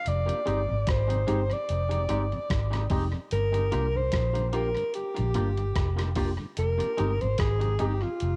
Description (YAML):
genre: lovers rock reggae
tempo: 74 BPM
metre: 4/4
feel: swing 56% on 16ths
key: F dorian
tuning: A4 = 440 Hz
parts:
  - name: breathy alto saxophone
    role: melody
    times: 0.0-8.4 s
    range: F4 to D5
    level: -32 LUFS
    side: equal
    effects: tape echo
  - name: vintage muted fingered electric bass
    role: bass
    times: 0.1-8.4 s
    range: F1 to C2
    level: -30 LUFS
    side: equal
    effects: none
  - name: gated 80s digital drum machine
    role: drums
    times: 0.1-8.4 s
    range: hi-hat, kick drum, rim click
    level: -34 LUFS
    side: equal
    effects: cassette tape, tape echo
  - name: mellow tonewheel organ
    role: accompaniment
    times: 0.3-8.1 s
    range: F2 to G4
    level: -42 LUFS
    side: equal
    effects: none
  - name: mellow tine electric piano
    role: accompaniment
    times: 0.5-7.9 s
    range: Ab3 to G4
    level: -39 LUFS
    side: equal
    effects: cassette tape, tape echo
  - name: twangy electric guitar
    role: stabs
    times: 0.5-7.9 s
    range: Ab3 to G4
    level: -41 LUFS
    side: equal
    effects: cassette tape, tape echo
room: light reverb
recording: home recording on cassette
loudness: -27 LUFS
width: mono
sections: 0.0-8.4 A section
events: none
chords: 0.1 Fm9; 3.3 Gm7; 6.6 Fm9